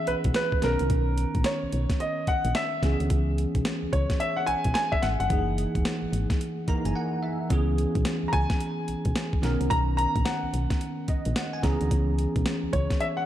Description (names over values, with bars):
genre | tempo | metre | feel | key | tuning
R&B, new jack swing | 109 BPM | 4/4 | swing 62% on 16ths | C# dorian | A4 = 440 Hz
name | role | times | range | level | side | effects
warm baby grand piano | melody | 0.0-13.2 s | A#4 to A#5 | -29 LUFS | equal | digital delay
bell-like tine electric piano | accompaniment | 0.0-13.3 s | D#3 to A#5 | -30 LUFS | right 1 dB | ensemble chorus
solid FM bass | bass | 0.1-12.9 s | E1 to D2 | -27 LUFS | equal | none
breakbeat sampler-style drum kit | drums | 0.1-13.2 s | hi-hat, kick drum, snare drum | -28 LUFS | equal | none
room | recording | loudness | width
moderate echo chamber reverb, RT60 2.2 s | dark, warm production | -24 LUFS | side -12 dB against mid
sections
0.0-13.3 A section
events
tine electric piano fill 6.4-7.5, 10.8-11.9; silent gap 7.0-7.5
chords
0.0 C#m7; 0.6 Bmaj9; 2.8 C#m7; 5.3 F#13; 7.5 C#m7; 9.4 Bmaj9; 11.6 C#m7